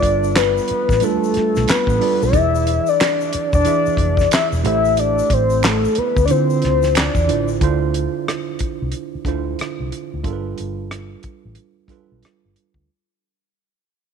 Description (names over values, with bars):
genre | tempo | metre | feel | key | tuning
R&B, neo-soul | 91 BPM | 4/4 | swing 61% on 16ths | D dorian | A4 = 436 Hz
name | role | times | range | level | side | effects
soft octave-layered synth lead | melody | 0.0-7.5 s | A4 to E5 | -18 LUFS | left 4 dB | chorus, phaser
tine electric piano | accompaniment | 0.0-12.9 s | D3 to E5 | -23 LUFS | right 12 dB | medium stereo tremolo
vintage muted fingered electric bass | bass | 0.0-12.9 s | E1 to D3 | -22 LUFS | left 1 dB | none
damped 70s drum kit | drums | 0.0-12.9 s | handclaps, hi-hat, kick drum, rim click, snare drum | -21 LUFS | equal | none
tube shaker and finger snaps | percussion | 0.0-7.6 s | none | -31 LUFS | right 6 dB | none
room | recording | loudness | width
light reverb, studio ambience | 1960s-style stereo | -16 LUFS | side -6 dB against mid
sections
0.0-7.6 A section; 7.6-12.9 B section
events
fade-out 7.6-12.9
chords
0.0 G9; 2.3 E7; 4.6 Am7; 6.3 Dm9; 7.6 Dm7; 10.2 G9